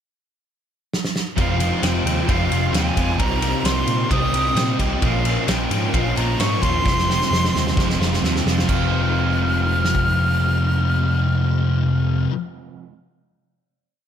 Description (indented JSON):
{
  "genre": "rock, shoegaze and dream pop",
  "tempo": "131 BPM",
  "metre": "4/4",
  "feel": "straight",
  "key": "F minor",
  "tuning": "A4 = 441 Hz",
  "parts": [
    { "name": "loose indie drum kit", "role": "drums", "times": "0.9-10.1 s", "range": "crash cymbal, kick drum, ride cymbal, snare drum", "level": "-23 LUFS", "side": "equal", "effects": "none" },
    { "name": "breathy bright jazz flute", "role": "melody", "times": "1.4-12.2 s", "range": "F5 to F6", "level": "-25 LUFS", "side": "equal", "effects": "slapback echo" },
    { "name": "electric guitar through a small old amp", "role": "arpeggios", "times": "1.4-12.3 s", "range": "Eb3 to G4", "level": "-33 LUFS", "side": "left 2 dB", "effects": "ensemble chorus, slapback echo" },
    { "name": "crunchy overdriven guitar", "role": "riff", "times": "1.4-12.3 s", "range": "F2 to F4", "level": "-25 LUFS", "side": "right 10 dB", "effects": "reverse reverb" },
    { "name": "thick fuzz guitar", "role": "riff", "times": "1.4-12.3 s", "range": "F2 to C4", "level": "-24 LUFS", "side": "left 7 dB", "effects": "distortion, ensemble chorus" },
    { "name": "overdriven picked electric bass", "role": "bass", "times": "1.4-12.3 s", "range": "F1 to Bb2", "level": "-23 LUFS", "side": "equal", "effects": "none" }
  ],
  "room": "light reverb, small room reverb",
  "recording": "none",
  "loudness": "-17 LUFS",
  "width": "side -9 dB against mid",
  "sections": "0.0-1.4 pickup bar; 1.4-8.7 A section; 8.7-12.4 final chord",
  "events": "drum fill 0.9-1.4, 6.9-8.7",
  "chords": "0.0 N.C.; 1.4 Fm7; 3.2 Cm7; 5.0 Bbm7; 6.9 Fm7"
}